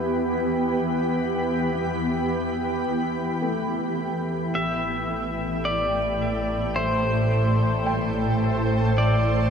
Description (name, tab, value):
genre	ambient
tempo	54 BPM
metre	4/4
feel	straight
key	A minor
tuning	A4 = 442 Hz
part	shimmering ambient pad	sustained chords	0.0-9.5 s	A2 to B5	-24 LUFS	equal	chorus, built-in reverb
part	felt-muted upright piano	arpeggios	0.0-9.5 s	A3 to G5	-36 LUFS	equal	none
part	clear symphonic double bass section	bass	0.0-9.5 s	A1 to E2	-30 LUFS	equal	none
part	pedal steel guitar	melody	4.6-9.5 s	C5 to E5	-26 LUFS	left 1 dB	tape echo
room	wet huge ambient reverb, RT60 9.0 s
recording	none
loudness	-22 LUFS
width	side -7 dB against mid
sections	0.0-9.5 A section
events	fade-in on double bass section 0.0-9.5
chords	0.0 Em; 4.5 Amadd9